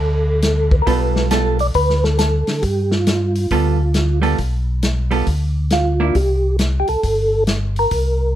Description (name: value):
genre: soul jazz organ trio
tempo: 136 BPM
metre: 4/4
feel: swing 65% on 8ths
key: G mixolydian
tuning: A4 = 440 Hz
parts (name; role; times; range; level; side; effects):
- percussive tonewheel organ; melody; 0.0-8.4 s; F4 to D5; -20 LUFS; right 1 dB; slow rotary speaker, chorus vibrato
- mellow tonewheel organ; bass; 0.0-8.4 s; G1 to D3; -18 LUFS; equal; chorus vibrato
- vintage drum kit; drums; 0.4-8.0 s; hi-hat, kick drum, snare drum; -21 LUFS; left 1 dB; none
- vintage hollow-body jazz guitar; accompaniment; 0.9-6.1 s; G3 to A4; -20 LUFS; right 5 dB; none
room: little or no reverb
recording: close, detailed microphones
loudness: -15 LUFS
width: side -12 dB against mid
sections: 0.0-8.4 A section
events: none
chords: 0.0 G9; 6.2 C7(no3)